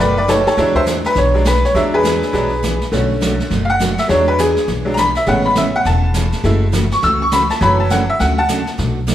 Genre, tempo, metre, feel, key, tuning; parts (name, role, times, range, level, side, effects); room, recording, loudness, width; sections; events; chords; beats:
country, western swing; 205 BPM; 4/4; swing 61% on 8ths; A4 = 441 Hz
picked steel-string acoustic guitar; accompaniment; 0.0-9.1 s; B2 to G#4; -22 LUFS; right 2 dB
tack piano; accompaniment; 0.0-8.7 s; D3 to E6; -15 LUFS; equal
upright bass; bass; 0.0-9.1 s; E1 to E2; -19 LUFS; equal
jazz brush drum kit; drums; 0.3-9.1 s; brushed snare drum, hi-hat, kick drum, snare drum; -24 LUFS; right 1 dB
moderate large studio reverb, RT60 1.2 s; band playing live in one room; -13 LUFS; side -12 dB against mid
0.0-9.1 A section
honky-tonk piano solo 0.0-9.1
0.0 B7; 0.6 E9; 1.7 E7; 2.9 Bm7; 4.1 E7; 5.3 Amaj7; 6.4 F#m7; 7.6 Dmaj7/F#
0.28 | 0.57 0.86 1.16 1.45 | 1.74 2.04 2.33 2.62 | 2.92 3.21 3.50 3.79 | 4.09 4.38 4.67 4.97 | 5.26 5.55 5.85 6.14 | 6.43 6.73 7.02 7.31 | 7.61 7.90 8.19 8.49 | 8.78 9.07